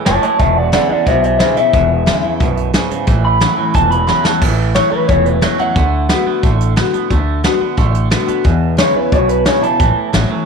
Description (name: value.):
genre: rockabilly.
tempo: 179 BPM.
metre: 4/4.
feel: straight.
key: A major.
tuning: A4 = 440 Hz.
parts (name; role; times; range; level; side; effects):
picked steel-string acoustic guitar; accompaniment; 0.0-10.5 s; E2 to F#4; -20 LUFS; left 10 dB; none.
twangy electric guitar; riff; 0.0-10.5 s; E2 to B3; -21 LUFS; right 14 dB; wide subtle chorus.
electric guitar through a small old amp; melody; 0.1-6.6, 8.8-10.5 s; B4 to B5; -15 LUFS; equal; spring reverb, tape echo.
upright bass; bass; 0.1-10.3 s; E1 to E2; -16 LUFS; equal; tube saturation.
soft brush drum kit; drums; 0.1-10.2 s; crash cymbal, hi-hat, kick drum, snare drum; -17 LUFS; equal; none.
room: light reverb, studio reverb.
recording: 1960s-style stereo with parts hard left and right.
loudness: -11 LUFS.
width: side -5 dB against mid.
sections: 0.0-4.4 A section; 4.4-10.5 A section.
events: drum fill 4.1-4.4.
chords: 0.4 E7; 3.1 A; 5.8 D; 8.5 E7; 9.8 A.